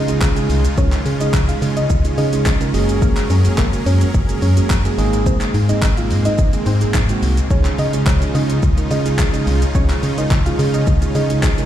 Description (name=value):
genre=dance-pop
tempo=107 BPM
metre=4/4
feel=straight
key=Db major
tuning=A4 = 440 Hz
part: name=soft round pluck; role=melody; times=0.0-11.3 s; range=Bb3 to F5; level=-26 LUFS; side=left 2 dB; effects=chorus, sidechain pumping, digital delay
part: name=supersaw chords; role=sustained chords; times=0.0-11.7 s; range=Db3 to Bb4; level=-25 LUFS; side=left 2 dB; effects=sidechain pumping
part: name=organ-like FM bass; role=bass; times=0.0-11.6 s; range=Gb1 to Db3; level=-17 LUFS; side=equal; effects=sidechain pumping
part: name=impact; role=sound effects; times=0.0-0.8 s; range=none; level=-38 LUFS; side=left 1 dB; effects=none
part: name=mellow tine electric piano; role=accompaniment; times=0.1-11.7 s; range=Ab3 to Bb4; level=-23 LUFS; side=right 5 dB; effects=sidechain pumping
part: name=deep house drum kit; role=drums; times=0.1-11.7 s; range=handclaps, hi-hat, kick drum, shaker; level=-18 LUFS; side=equal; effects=none
room=little or no reverb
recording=played on a big sound system in a bare room, large studio reverb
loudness=-14 LUFS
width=side -11 dB against mid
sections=0.0-11.7 A section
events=impact 0.0-0.8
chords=0.0 Dbadd9; 2.7 Gbadd9; 5.0 Abadd9; 7.5 Dbadd9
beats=0.22 | 0.78 1.34 1.90 2.46 | 3.02 3.58 4.14 4.70 | 5.26 5.82 6.38 6.95 | 7.51 8.07 8.63 9.19 | 9.75 10.31 10.87 11.43